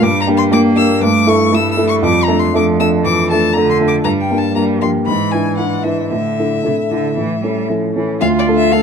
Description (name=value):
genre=quick classical-period movement for piano trio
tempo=117 BPM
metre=4/4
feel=uneven beats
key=D minor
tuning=A4 = 439 Hz
part: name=rich violin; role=melody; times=0.0-8.8 s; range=D5 to E6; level=-19 LUFS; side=left 7 dB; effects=none
part: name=rich cello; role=second line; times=0.0-8.8 s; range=C3 to A4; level=-19 LUFS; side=right 6 dB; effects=none
part: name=dark grand piano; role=accompaniment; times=0.0-8.8 s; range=D2 to B4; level=-14 LUFS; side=equal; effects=none
room=light reverb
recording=dark, warm production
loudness=-12 LUFS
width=side -6 dB against mid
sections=0.0-8.2 A section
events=none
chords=0.0 Gm; 1.0 A5/G; 2.0 Dm/F; 4.0 Gm; 5.1 E7/G#; 6.1 Asus4; 7.2 A; 8.2 Dm